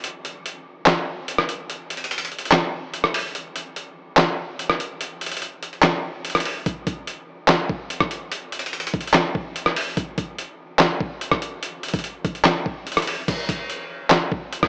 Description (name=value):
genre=hip hop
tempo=145 BPM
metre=4/4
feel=half-time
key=none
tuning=none
part: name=dusty soul sampler-style drum kit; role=drums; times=0.0-14.7 s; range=crash cymbal, handclaps, hi-hat, kick drum, rim click, snare drum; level=-20 LUFS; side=equal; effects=none
room=light reverb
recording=worn, warbling old tape, cassette tape, warbly pitch drift, small speaker sound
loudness=-20 LUFS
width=side -40 dB against mid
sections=0.0-13.3 A section; 13.3-14.7 B section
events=break 0.0-6.7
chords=none